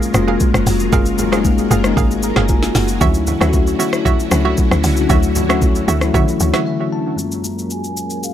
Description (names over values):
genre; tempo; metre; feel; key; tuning
amapiano; 115 BPM; 4/4; straight; F# major; A4 = 441 Hz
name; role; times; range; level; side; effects
bell-like tine electric piano; accompaniment; 0.0-8.3 s; F#2 to A#5; -19 LUFS; left 5 dB; low-pass filter, analog delay
string machine, full ensemble; sustained chords; 0.0-8.3 s; F#2 to G#5; -23 LUFS; equal; phaser, ensemble chorus, sidechain pumping, low-pass filter
hollow square pluck; stabs; 0.0-6.6 s; F#4 to E#5; -23 LUFS; right 8 dB; chorus, analog delay
smooth R&B drum kit; drums; 0.0-8.3 s; hi-hat, kick drum, rim click, shaker, snare drum; -18 LUFS; equal; none
bongos and congas; percussion; 0.0-6.7 s; none; -28 LUFS; right 4 dB; none
tight log drum bass; bass; 0.1-6.5 s; E#1 to D3; -18 LUFS; equal; none
reedy jazz flute; melody; 7.2-8.3 s; E#5 to A#5; -30 LUFS; right 3 dB; low-pass filter, analog delay
room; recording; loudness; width
little or no reverb; echo-heavy mix; -13 LUFS; side -10 dB against mid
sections
0.0-7.2 A section; 7.2-8.3 B section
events
drop 0.0-7.2; tine electric piano fill 2.0-3.0, 6.4-7.2; break 6.7-7.2; filter sweep 7.2-8.3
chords
0.0 F#maj9; 3.0 Dmaj9; 7.2 F#maj9